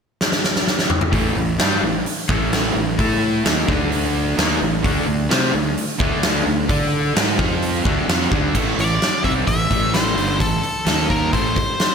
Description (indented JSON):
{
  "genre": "classic rock",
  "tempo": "130 BPM",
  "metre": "4/4",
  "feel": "straight",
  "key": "A minor",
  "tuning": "A4 = 440 Hz",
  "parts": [
    { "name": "big rock drum kit", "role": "drums", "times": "0.2-11.9 s", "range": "crash cymbal, hi-hat, kick drum, snare drum, toms", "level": "-20 LUFS", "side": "equal", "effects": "none" },
    { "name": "overdriven electric guitar", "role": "riff", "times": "1.1-11.6 s", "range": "G2 to D5", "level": "-24 LUFS", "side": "right 9 dB", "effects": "slapback echo" },
    { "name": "raw garage guitar", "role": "riff", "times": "1.1-11.6 s", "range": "G2 to D5", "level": "-24 LUFS", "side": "left 9 dB", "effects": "overdrive" },
    { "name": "fuzz fingered electric bass", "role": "bass", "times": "1.1-11.6 s", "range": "G1 to D3", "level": "-24 LUFS", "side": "equal", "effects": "overdrive" },
    { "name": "octave-fuzz lead guitar", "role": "melody", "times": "8.8-11.9 s", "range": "A4 to E5", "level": "-21 LUFS", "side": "left 1 dB", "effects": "distortion, digital delay" }
  ],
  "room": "moderate recital hall reverb, RT60 1.5 s",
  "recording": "big arena sound",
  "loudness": "-16 LUFS",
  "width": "side -6 dB against mid",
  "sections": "0.0-1.1 A section; 1.1-8.5 B section; 8.5-11.9 C section",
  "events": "drum fill 0.2-1.1",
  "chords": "0.0 N.C.; 1.1 A5; 3.7 D5; 4.4 A5; 4.8 D5; 7.4 F5; 7.8 D5; 8.5 Am; 10.9 D#5; 11.3 Am"
}